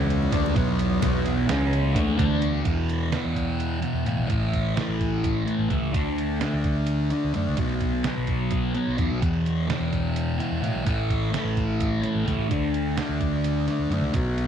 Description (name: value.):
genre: psychedelic rock.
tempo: 256 BPM (eighths).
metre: 7/8.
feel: straight.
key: unclear.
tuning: A4 = 439 Hz.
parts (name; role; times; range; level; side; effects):
thick fuzz guitar; riff; 0.0-14.5 s; E2 to D4; -25 LUFS; equal; distortion, phaser.
fingered electric bass; bass; 0.0-14.5 s; A1 to A2; -28 LUFS; equal; none.
bowed-like drone; drone; 0.0-2.7 s; E2; -34 LUFS; equal; built-in reverb.
trip hop sampler-style drum kit; drums; 0.1-14.5 s; hi-hat, kick drum, snare drum; -29 LUFS; right 2 dB; none.
congas; percussion; 0.1-2.5 s; none; -38 LUFS; left 12 dB; none.
room: light reverb.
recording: 1960s-style stereo.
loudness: -22 LUFS.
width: side -8 dB against mid.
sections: 0.0-2.7 A section; 2.7-14.5 B section.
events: none.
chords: 0.3 Bm7; 1.5 C#5; 2.0 Dsus2; 2.7 E5; 4.3 A5; 5.9 D5; 7.6 B5; 9.2 E5; 10.9 A5; 12.5 D5.